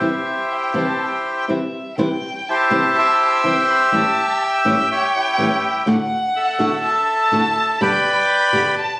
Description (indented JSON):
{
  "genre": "tango",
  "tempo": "124 BPM",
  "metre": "4/4",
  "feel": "rubato",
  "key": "C major",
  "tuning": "A4 = 442 Hz",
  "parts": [
    { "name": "bandoneon", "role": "melody", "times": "0.0-8.8 s", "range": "E4 to G5", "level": "-17 LUFS", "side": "equal", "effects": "none" },
    { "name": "dark violin", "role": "second line", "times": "0.0-9.0 s", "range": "E5 to B5", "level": "-23 LUFS", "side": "equal", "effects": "none" },
    { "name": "flamenco guitar", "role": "accompaniment", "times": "0.0-8.6 s", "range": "G2 to G4", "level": "-21 LUFS", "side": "equal", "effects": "none" }
  ],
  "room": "moderate large studio reverb, RT60 0.9 s",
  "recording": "recorded on a phone in the room, studio reverb, compression",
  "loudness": "-15 LUFS",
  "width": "side -22 dB against mid",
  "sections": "0.0-2.0 A section; 2.0-9.0 B section",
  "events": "none",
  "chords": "0.0 C; 3.9 A7; 5.9 D/A; 7.8 G",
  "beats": "| 0.02 0.51 0.99 1.49 | 1.98 2.47 2.95 3.44 | 3.92 4.41 4.90 5.38 | 5.87 6.35 6.84 7.32 | 7.81 8.29 8.78"
}